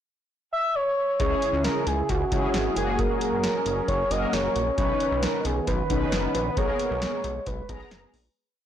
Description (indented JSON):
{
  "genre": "synth-pop",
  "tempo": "134 BPM",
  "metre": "4/4",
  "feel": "straight",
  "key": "unclear",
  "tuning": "A4 = 441 Hz",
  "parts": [
    { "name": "expressive synth lead", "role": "melody", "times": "0.5-8.1 s", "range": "F#4 to E5", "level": "-26 LUFS", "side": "equal", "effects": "chorus, ping-pong delay" },
    { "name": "mellow synth brass", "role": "accompaniment", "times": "1.2-8.2 s", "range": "A#3 to A#5", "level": "-29 LUFS", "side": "left 1 dB", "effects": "chorus" },
    { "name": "sweeping resonant pad", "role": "sustained chords", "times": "1.5-8.3 s", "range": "C#3 to A#4", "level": "-33 LUFS", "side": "right 1 dB", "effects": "chorus" },
    { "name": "chorused synth bass", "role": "bass", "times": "1.2-8.3 s", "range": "F#1 to C#2", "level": "-30 LUFS", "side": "equal", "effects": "tube saturation" },
    { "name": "electro analog drum machine", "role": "drums", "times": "1.2-8.2 s", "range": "hi-hat, kick drum, snare drum", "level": "-30 LUFS", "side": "equal", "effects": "none" }
  ],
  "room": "moderate plate reverb, RT60 1.1 s, digital ambience",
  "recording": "blown-out, overdriven recording, overdrive",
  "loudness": "-23 LUFS",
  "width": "side -10 dB against mid",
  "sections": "0.0-1.2 pickup bar; 1.2-8.4 pre-chorus",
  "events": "fade-out 6.6-8.4",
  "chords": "0.0 N.C.; 1.2 C#m; 2.8 F#add9; 4.8 Badd9; 6.6 G#madd9/B"
}